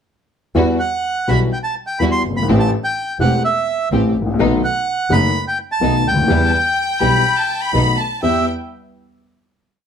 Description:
tango; 126 BPM; 4/4; rubato; E harmonic minor; A4 = 439 Hz
warm concert grand piano; accompaniment; 0.5-8.4 s; E1 to G4; -18 LUFS; left 3 dB
rich studio string section; stabs; 0.6-8.4 s; G3 to G4; -25 LUFS; right 2 dB
warm double bass; bass; 0.6-8.4 s; E1 to E2; -20 LUFS; right 2 dB
bandoneon; melody; 0.8-8.5 s; E5 to C6; -18 LUFS; right 2 dB; plate reverb
warm studio violin section; second line; 6.5-8.5 s; G5 to B5; -20 LUFS; left 2 dB
light reverb; -15 LUFS; side -8 dB against mid
0.6-8.2 A section; 8.2-9.9 final chord
0.6 Emadd9; 2.5 Am7; 4.4 B7; 6.3 Em; 7.7 B7; 8.2 Em

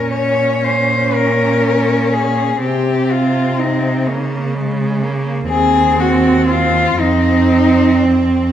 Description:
classical, lyrical piece for cello ensemble; 36-42 BPM (dotted quarters); 6/8; rubato; Bb minor; A4 = 440 Hz
warm cello; melody; 0.0-8.5 s; C4 to Db5; -16 LUFS; left 4 dB
warm cello; second line; 0.0-8.5 s; Ab3 to Db4; -19 LUFS; right 6 dB
rich cello; accompaniment; 0.0-8.5 s; Ab3 to Db4; -20 LUFS; left 1 dB
rich cello; bass; 0.0-8.5 s; Eb2 to Db3; -18 LUFS; right 1 dB
wet recital hall reverb, RT60 1.6 s; -12 LUFS; side -10 dB against mid
0.0-8.5 A section
0.0 Bbm; 2.6 Cmadd11; 4.1 Bbm/Db; 5.5 Ebm69; 7.0 F5

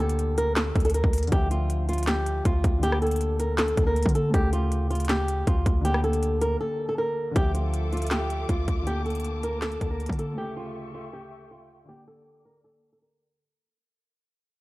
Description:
hip hop, trap; 159 BPM; 4/4; half-time; D harmonic minor; A4 = 440 Hz
flamenco guitar; melody; 0.0-13.4 s; F4 to Bb4; -28 LUFS; equal; low-pass filter
dark grand piano; accompaniment; 0.0-13.4 s; D2 to E5; -34 LUFS; left 1 dB; low-pass filter
warm 808-style bass; bass; 0.0-10.4 s; D2 to D3; -26 LUFS; equal; transformer saturation
trap drum kit; drums; 0.0-10.3 s; hi-hat, kick drum, rim click, snare drum; -27 LUFS; equal
warm studio string section; sustained chords; 7.4-13.4 s; Bb3 to D6; -39 LUFS; left 1 dB; low-pass filter
small room reverb; dry, gritty hardware recording; -23 LUFS; side -20 dB against mid
0.0-7.4 A section; 7.4-13.4 B section
break 6.6-7.4; fade-out 7.4-13.4; filter sweep 7.4-13.4
0.0 Gm/D; 1.3 Dmadd9; 2.8 Bbmaj7/D; 4.3 A7/D; 5.8 Gm/D; 7.4 Dmadd9; 8.9 Bbmaj7/D; 10.4 A7/D; 11.9 Gm/D

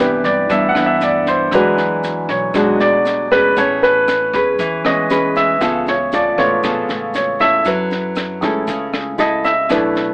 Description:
bossa nova; 117 BPM; 4/4; straight; A4 = 440 Hz
nylon-string guitar; accompaniment; 0.0-10.1 s; G2 to B4; -19 LUFS; equal
warm baby grand piano; accompaniment; 0.0-10.1 s; E3 to F#5; -15 LUFS; equal
upright bass; bass; 0.0-10.1 s; A1 to G2; -31 LUFS; equal
compact cocktail drum kit; drums; 0.2-10.0 s; kick drum, rim click, snare drum; -25 LUFS; equal
egg shaker; percussion; 0.2-10.1 s; -39 LUFS; left 2 dB
light reverb; AM radio sound; -13 LUFS; side -25 dB against mid
0.0-10.1 A section
grand piano solo 0.0-10.1
0.0 Cmaj9; 1.5 E9; 3.6 Amaj9; 5.6 C#7alt; 7.7 F#m7

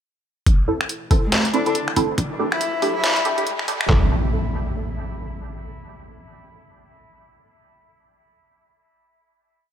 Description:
deep dubstep; 140 BPM; 4/4; swing 59% on 16ths, half-time; A minor; A4 = 439 Hz
soft dub sub bass; bass; 0.5-4.1 s; A1 to D2; -34 LUFS; equal
dubstep drum kit; drums; 0.5-3.9 s; finger snaps, hi-hat, snare drum; -23 LUFS; equal; overdrive, high-pass filter on hats, high-pass filter on snare, high-pass filter on room
trip hop sampler-style drum kit; drums; 0.5-4.0 s; handclaps, kick drum, toms; -18 LUFS; equal; overdrive
riser and impact; sound effects; 1.8-5.6 s; -27 LUFS; equal
filtered dub chord stab; stabs; 0.7-4.1 s; A3 to A4; -24 LUFS; right 2 dB; phaser, ensemble chorus, dub echo
warm cello; melody; 1.2-3.4 s; A3 to E4; -27 LUFS; left 2 dB; dub echo
moderate echo chamber reverb, RT60 1.6 s; high-pass filter; -18 LUFS; side -9 dB against mid
0.5-3.9 build; 3.9-5.6 final chord
build-up 0.5-3.9; filter sweep 0.5-3.9; riser 1.8-3.9
0.5 Am; 2.2 Dsus4; 3.9 Am

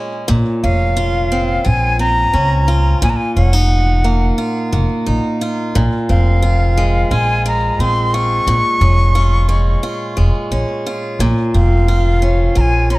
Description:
folktronica; 88 BPM; 4/4; straight; Bb minor; A4 = 435 Hz
picked swing-style acoustic guitar; arpeggios; 0.0-13.0 s; Bb2 to F4; -19 LUFS; equal; plate reverb
upright bass; bass; 0.3-13.0 s; F1 to Db2; -14 LUFS; equal
bright wooden flute; melody; 0.6-13.0 s; F5 to Db6; -19 LUFS; equal; plate reverb, tape echo
light reverb; dark, warm production; -13 LUFS; side -20 dB against mid
0.3-13.0 A section
0.3 Bbmadd9; 3.0 Ebmadd9; 5.7 Fm; 8.5 Db; 11.2 Bbmadd9

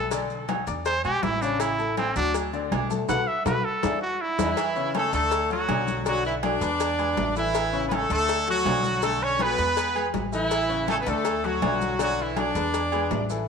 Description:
latin, salsa; 162 BPM; 4/4; straight; A major; A4 = 440 Hz
clear trumpet; melody; 0.0-4.6 s; C4 to F#5; -27 LUFS; right 2 dB; tape echo
clear concert grand piano; accompaniment; 0.0-13.5 s; C#3 to D6; -31 LUFS; left 9 dB
upright bass; bass; 0.0-13.5 s; A1 to E2; -32 LUFS; right 2 dB
agogo bells and timbales; percussion; 0.1-13.3 s; -32 LUFS; right 12 dB
congas; percussion; 0.1-13.5 s; -34 LUFS; left 8 dB
cowbell; percussion; 0.1-13.3 s; -34 LUFS; left 11 dB
maracas; percussion; 0.1-13.5 s; -43 LUFS; right 15 dB
brilliant horn section; melody; 4.4-13.3 s; E3 to D5; -25 LUFS; right 1 dB
moderate echo chamber reverb, RT60 1.4 s, studio ambience; 1960s-style stereo with parts hard left and right; -22 LUFS; side -6 dB against mid
0.0-4.6 A section; 4.6-13.5 B section
trumpet solo 0.0-4.6; band accent 3.1-4.6; drum fill 3.6-4.6
0.1 Bm; 0.9 E7; 1.6 A; 2.3 D; 3.1 B5; 3.8 E7; 4.6 A; 5.3 D; 6.1 Bm7; 6.8 E7; 7.5 A; 8.3 D; 9.0 Bm7; 9.8 E; 10.5 A; 11.3 D; 12.0 Bm7; 12.7 E7

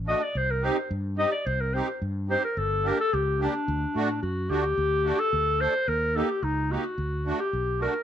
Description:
klezmer; 109 BPM; 2/4; straight; D phrygian dominant; A4 = 440 Hz
fretless electric bass; bass; 0.0-7.9 s; G1 to A2; -30 LUFS; equal
breathy clarinet; melody; 0.1-8.0 s; D4 to Eb5; -26 LUFS; left 1 dB; plate reverb
musette accordion; accompaniment; 0.1-7.9 s; A3 to A4; -30 LUFS; right 3 dB
light reverb; -24 LUFS; side -9 dB against mid
0.0-4.8 A section; 4.8-8.0 B section
0.4 Cm; 2.6 Gm; 3.7 D; 5.9 Eb; 7.0 D

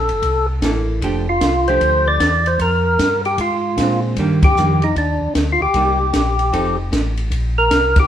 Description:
soul jazz organ trio; 152 BPM; 4/4; swing 65% on 8ths; A4 = 439 Hz
percussive tonewheel organ; melody; 0.0-8.1 s; D4 to D5; -17 LUFS; equal; slow rotary speaker, overdrive
mellow tonewheel organ; bass; 0.0-8.1 s; F1 to Bb2; -20 LUFS; equal; slow rotary speaker
compact cocktail drum kit; drums; 0.1-8.0 s; hi-hat, kick drum, ride cymbal, snare drum; -20 LUFS; equal
hollow-body jazz guitar; accompaniment; 0.6-6.8 s; Eb3 to A4; -21 LUFS; right 2 dB
moderate stone room reverb, RT60 1.1 s; band playing live in one room; -14 LUFS; side -10 dB against mid
0.0-8.1 A section
band accent 4.4, 7.9
0.2 C6; 1.0 F69; 2.6 Bb9; 4.2 Ebmaj7; 5.7 Cm7; 6.5 F7; 7.3 Bbsus2

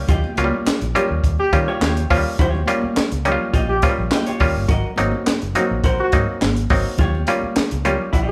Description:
funk; 104 BPM; 4/4; straight; Eb mixolydian; A4 = 440 Hz
muted clav; stabs; 0.0-8.3 s; F3 to G4; -24 LUFS; equal
vintage muted fingered electric bass; bass; 0.0-8.3 s; Gb1 to Eb3; -26 LUFS; equal
vintage hollow-body jazz guitar; accompaniment; 0.1-8.3 s; F4 to Eb5; -28 LUFS; equal
compact cocktail drum kit; drums; 0.1-8.3 s; handclaps, hi-hat, kick drum, snare drum; -23 LUFS; equal
congas; percussion; 0.1-8.3 s; -31 LUFS; equal
warm trombone; second line; 0.9-8.3 s; Gb4 to G4; -26 LUFS; equal
moderate large studio reverb, RT60 1.0 s; band playing live in one room; -19 LUFS; mono
0.0-8.3 A section
0.0 Eb9; 4.7 Ab9; 7.0 Eb9

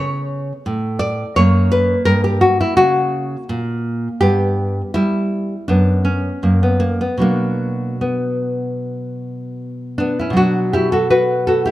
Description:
classical, baroque-style dance for nylon-string guitar; 74-85 BPM; 4/4; rubato; B minor; A4 = 441 Hz
nylon-string guitar; solo; 0.0-11.7 s; F#2 to D5; -15 LUFS; equal
moderate recital hall reverb, RT60 1.4 s; -15 LUFS; side -15 dB against mid
0.0-10.4 A section; 10.4-11.7 B section
0.0 Aadd9; 1.4 F#; 4.2 G; 5.7 Bm/F#; 6.4 F#; 7.2 Bm

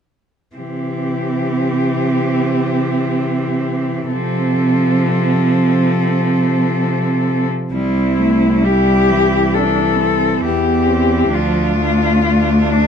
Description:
classical, lyrical piece for cello ensemble; 67 BPM; 4/4; uneven beats, rubato; C major; A4 = 439 Hz
rich cello; melody; 0.6-12.9 s; D4 to A4; -20 LUFS; left 6 dB
clear cello; second line; 0.6-12.9 s; B3 to E4; -21 LUFS; right 7 dB
clear cello; accompaniment; 0.6-12.9 s; E3 to A3; -19 LUFS; left 2 dB
clear cello; bass; 0.6-12.9 s; C2 to C3; -18 LUFS; right 2 dB
light reverb; dark, warm production; -13 LUFS; side -7 dB against mid
0.6-7.7 A section; 7.7-12.9 B section
0.6 C; 4.1 F/C; 7.7 C; 11.3 Dm

